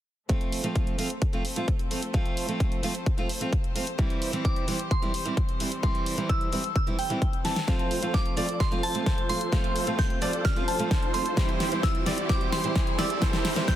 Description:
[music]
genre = EDM, festival progressive house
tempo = 130 BPM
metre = 4/4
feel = straight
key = F major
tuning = A4 = 438 Hz
[part]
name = fingerpicked steel-string acoustic guitar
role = accompaniment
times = 0.3-13.8 s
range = E3 to F4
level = -31 LUFS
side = right 2 dB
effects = sidechain pumping, digital delay
[part]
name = rich chamber string section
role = sustained chords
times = 0.3-13.8 s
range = E3 to C5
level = -38 LUFS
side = left 1 dB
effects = sidechain pumping, low-pass filter
[part]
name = big-room dance drum kit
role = drums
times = 0.3-13.8 s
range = hi-hat, snare drum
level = -32 LUFS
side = equal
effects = none
[part]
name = electronic kick drum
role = drums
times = 0.3-13.8 s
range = none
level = -26 LUFS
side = equal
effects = none
[part]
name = soft synth bell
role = melody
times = 4.4-13.8 s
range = G5 to G6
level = -32 LUFS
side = equal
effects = chorus, phaser, digital delay
[part]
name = clear concert grand piano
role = arpeggios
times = 7.7-13.8 s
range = C5 to D5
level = -35 LUFS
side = equal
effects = sidechain pumping, low-pass filter, digital delay
[part]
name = dense compressed supersaw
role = riff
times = 7.7-13.8 s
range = E4 to D5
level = -34 LUFS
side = right 1 dB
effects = sidechain pumping, low-pass filter, digital delay
[part]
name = riser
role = sound effects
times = 9.4-13.8 s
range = none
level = -38 LUFS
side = right 2 dB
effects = none
[sound]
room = light reverb, studio ambience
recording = dense, heavily limited modern master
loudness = -24 LUFS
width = side -12 dB against mid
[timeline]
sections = 0.3-7.7 A section; 7.7-13.8 B section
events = filter sweep on string section 0.3-7.7; drum fill 7.4, 7.7-13.8; build-up 7.7-13.8; filter sweep on supersaw synth 7.7-13.8; riser 9.4-13.8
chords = 0.3 F; 4.0 C; 7.7 F; 11.4 C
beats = | 0.29 0.76 1.22 1.68 | 2.14 2.60 3.06 3.53 | 3.99 4.45 4.91 5.37 | 5.83 6.29 6.76 7.22 | 7.68 8.14 8.60 9.06 | 9.53 9.99 10.45 10.91 | 11.37 11.83 12.29 12.76 | 13.22 13.68

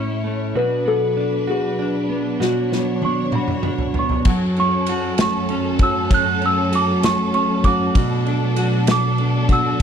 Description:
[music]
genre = six-eight pop ballad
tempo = 65 BPM (dotted quarters)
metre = 6/8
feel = straight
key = F# minor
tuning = A4 = 435 Hz
[part]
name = direct-recorded clean electric guitar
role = accompaniment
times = 0.0-9.8 s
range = A2 to F#4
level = -22 LUFS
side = equal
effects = double-tracked left and right
[part]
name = clear studio string section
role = sustained chords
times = 0.0-9.8 s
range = F#2 to C#5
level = -24 LUFS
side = equal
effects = none
[part]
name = small celesta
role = melody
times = 0.6-9.8 s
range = F#4 to F#6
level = -21 LUFS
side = right 1 dB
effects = none
[part]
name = loose indie drum kit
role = drums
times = 2.4-9.8 s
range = crash cymbal, kick drum, ride cymbal, snare drum, toms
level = -22 LUFS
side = equal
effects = none
[sound]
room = studio reverb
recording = none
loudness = -17 LUFS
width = side -8 dB against mid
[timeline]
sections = 0.0-4.3 A section; 4.3-9.8 B section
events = drum fill 2.4-4.3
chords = 0.0 A; 0.6 Bm; 4.3 F#m; 8.0 Bm7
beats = | 0.55 1.48 | 2.40 3.33 | 4.26 5.18 | 6.11 7.03 | 7.96 8.88 | 9.80

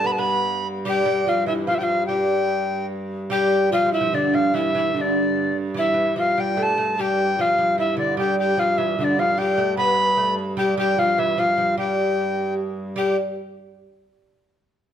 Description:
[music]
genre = medieval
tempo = 149 BPM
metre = 3/4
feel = straight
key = G mixolydian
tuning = A4 = 436 Hz
[part]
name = tenor recorder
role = melody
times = 0.0-13.2 s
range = D5 to B5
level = -21 LUFS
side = equal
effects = none
[part]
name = lute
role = second line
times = 0.0-13.2 s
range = D3 to B3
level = -27 LUFS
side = right 4 dB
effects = none
[part]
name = mellow hollow pan flute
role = second line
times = 0.0-13.2 s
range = D4 to B4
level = -25 LUFS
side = left 4 dB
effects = none
[part]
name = dark hurdy-gurdy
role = drone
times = 0.0-13.0 s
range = G2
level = -29 LUFS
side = right 1 dB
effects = none
[sound]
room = moderate recital hall reverb, RT60 1.2 s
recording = close, detailed microphones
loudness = -19 LUFS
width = side -9 dB against mid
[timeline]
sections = 0.0-3.3 A section; 3.3-13.0 A section; 13.0-14.2 B section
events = speeding up 0.0-14.2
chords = none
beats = 0.05 0.46 | 0.87 1.28 1.69 | 2.10 2.51 2.92 | 3.33 3.73 4.14 | 4.54 4.95 5.36 | 5.76 6.17 6.57 | 6.97 7.38 7.78 | 8.18 8.59 8.99 | 9.39 9.79 10.19 | 10.59 10.99 11.39 | 11.78 12.18 12.58 | 12.98

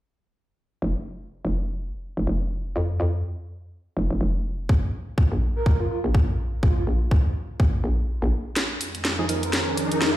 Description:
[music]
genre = bass house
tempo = 124 BPM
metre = 4/4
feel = swing 58% on 16ths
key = F minor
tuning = A4 = 440 Hz
[part]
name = hollow knocking FM bass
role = bass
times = 0.8-8.3 s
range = F1 to F2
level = -24 LUFS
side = equal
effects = overdrive, sidechain pumping
[part]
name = electronic kick drum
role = drums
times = 4.7-7.7 s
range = none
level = -22 LUFS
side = equal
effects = none
[part]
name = breathy flute-like synth lead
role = melody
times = 5.6-10.1 s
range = F4 to Bb4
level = -32 LUFS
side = right 2 dB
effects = wide subtle chorus, dub echo
[part]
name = sweeping resonant pad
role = sustained chords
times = 8.6-10.2 s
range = F2 to Ab4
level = -31 LUFS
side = right 3 dB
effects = chorus, sidechain pumping
[part]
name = garage drum kit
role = drums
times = 8.6-10.1 s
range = hi-hat, snare drum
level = -24 LUFS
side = equal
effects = overdrive
[part]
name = riser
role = sound effects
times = 9.1-10.2 s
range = none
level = -27 LUFS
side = left 1 dB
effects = none
[part]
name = percussive organ stab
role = stabs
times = 9.2-9.4 s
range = F3 to Bb4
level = -29 LUFS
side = right 3 dB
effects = chorus, sidechain pumping
[sound]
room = light reverb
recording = played on a big sound system in a bare room, large studio reverb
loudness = -22 LUFS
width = side -14 dB against mid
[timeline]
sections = 0.8-8.6 A section; 8.6-10.2 B section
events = break 8.1-8.6; build-up 8.6-10.2; drum fill 8.6-10.2; filter sweep 8.6-10.2; riser 9.1-10.2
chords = 0.8 N.C.; 8.6 Fm7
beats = | 0.82 1.31 1.79 2.27 | 2.76 3.24 3.73 4.21 | 4.69 5.18 5.66 6.14 | 6.63 7.11 7.60 8.08 | 8.56 9.05 9.53 10.02

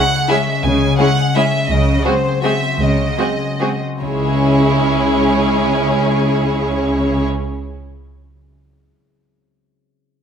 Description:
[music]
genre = classical, orchestral ballroom waltz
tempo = 138-183 BPM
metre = 3/4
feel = rubato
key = C# minor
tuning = A4 = 439 Hz
[part]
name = rich chamber violin section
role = melody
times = 0.0-7.3 s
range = B#4 to G#5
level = -21 LUFS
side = right 2 dB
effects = none
[part]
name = concert harp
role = arpeggios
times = 0.0-7.9 s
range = C#3 to E5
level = -21 LUFS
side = left 6 dB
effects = none
[part]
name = rich chamber violin section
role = second line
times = 0.3-7.3 s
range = E4 to G#4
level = -21 LUFS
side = right 2 dB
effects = none
[part]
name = clear symphonic viola section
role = accompaniment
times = 0.3-7.3 s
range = G#3 to C#4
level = -20 LUFS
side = left 1 dB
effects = none
[part]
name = clear chamber double bass section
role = bass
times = 0.6-7.3 s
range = C#2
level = -22 LUFS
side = right 2 dB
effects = none
[part]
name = rich symphonic cello section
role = bass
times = 0.6-7.3 s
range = C#3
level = -20 LUFS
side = right 1 dB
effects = none
[sound]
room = moderate recital hall reverb, RT60 1.5 s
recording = none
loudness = -14 LUFS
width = side -7 dB against mid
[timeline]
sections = 0.0-4.0 A section; 4.0-6.5 B section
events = slowing down 1.2-4.0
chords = 0.0 C#m; 1.7 G#7/C#; 4.0 C#m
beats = 0.30 | 0.64 0.98 1.35 | 1.70 2.05 2.44 | 2.80 3.18 3.60 | 4.02 4.42 4.85 | 5.25 5.65 6.09

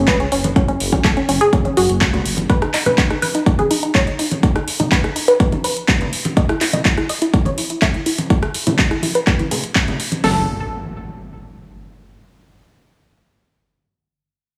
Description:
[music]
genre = progressive house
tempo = 124 BPM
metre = 4/4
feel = straight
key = F# dorian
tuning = A4 = 440 Hz
[part]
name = unison pluck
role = arpeggios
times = 0.0-10.4 s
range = C#4 to E5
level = -22 LUFS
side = equal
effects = sidechain pumping, digital delay
[part]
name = dark detuned saw bass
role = bass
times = 0.0-2.4, 10.2-10.5 s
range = F#1 to C#2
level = -24 LUFS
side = equal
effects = sidechain pumping
[part]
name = pop drum kit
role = drums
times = 0.1-10.4 s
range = hi-hat, kick drum, snare drum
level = -19 LUFS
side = equal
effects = overdrive
[part]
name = pop drum kit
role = drums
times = 0.1-10.2 s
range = handclaps, hi-hat, rim click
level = -23 LUFS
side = equal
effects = overdrive, sidechain pumping on hats, sidechain pumping on cymbals
[part]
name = congas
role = percussion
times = 0.1-10.2 s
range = none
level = -27 LUFS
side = equal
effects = sidechain pumping on perc
[part]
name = impact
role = sound effects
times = 10.3-12.2 s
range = none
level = -32 LUFS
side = equal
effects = none
[sound]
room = light reverb, digital ambience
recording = studio ambience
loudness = -17 LUFS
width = mono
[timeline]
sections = 0.0-10.2 A section; 10.2-12.2 B section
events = filter sweep on synth pluck 0.0-10.2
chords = 0.0 F#5; 2.5 N.C.; 10.2 F#m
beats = 0.08 | 0.56 1.05 1.53 2.01 | 2.50 2.98 3.46 3.95 | 4.43 4.92 5.40 5.88 | 6.37 6.85 7.34 7.82 | 8.30 8.79 9.27 9.76 | 10.24 10.72 11.21 11.69

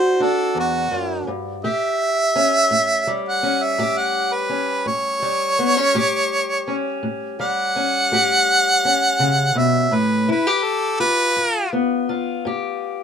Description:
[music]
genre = acoustic country blues, solo or duo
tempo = 56 BPM (dotted quarters)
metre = 12/8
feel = straight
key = unclear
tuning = A4 = 439 Hz
[part]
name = clear harmonica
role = melody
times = 0.0-11.7 s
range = F#4 to F#5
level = -18 LUFS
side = right 2 dB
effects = none
[part]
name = fingerpicked steel-string acoustic guitar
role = accompaniment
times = 0.0-13.0 s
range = D2 to G4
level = -22 LUFS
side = left 2 dB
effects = none
[sound]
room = moderate booth ambience, RT60 0.2 s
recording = minimal, uncompressed stereo recording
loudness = -17 LUFS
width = side -7 dB against mid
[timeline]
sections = 0.0-13.0 A section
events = none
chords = 0.0 D7; 1.6 A7; 10.3 G7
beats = 0.56 | 1.63 2.71 3.79 4.87 | 5.96 7.04 8.12 9.20 | 10.28 11.37 12.45

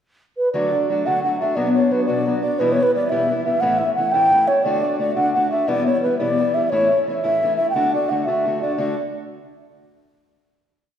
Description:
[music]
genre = celtic folk, Celtic jig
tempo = 116 BPM (dotted quarters)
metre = 6/8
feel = straight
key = D major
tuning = A4 = 440 Hz
[part]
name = mellow baroque flute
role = melody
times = 0.4-9.0 s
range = B4 to G5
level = -18 LUFS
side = right 1 dB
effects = none
[part]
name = fingerpicked steel-string acoustic guitar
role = accompaniment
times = 0.5-8.9 s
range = E2 to F#4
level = -23 LUFS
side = left 2 dB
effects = none
[sound]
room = wet scoring stage reverb, RT60 1.9 s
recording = recorded in a church or concert hall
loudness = -17 LUFS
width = side -9 dB against mid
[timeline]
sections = 0.0-0.5 pickup bar; 0.5-8.8 A section; 8.8-9.8 final chord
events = none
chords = 0.0 N.C.; 0.5 D; 1.6 Bm; 2.6 Em; 3.6 A; 4.7 D; 5.7 Em; 6.7 A; 7.8 D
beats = 0.02 | 0.53 1.05 | 1.56 2.08 | 2.59 3.11 | 3.62 4.14 | 4.66 5.17 | 5.69 6.21 | 6.72 7.24 | 7.75 8.27 | 8.79

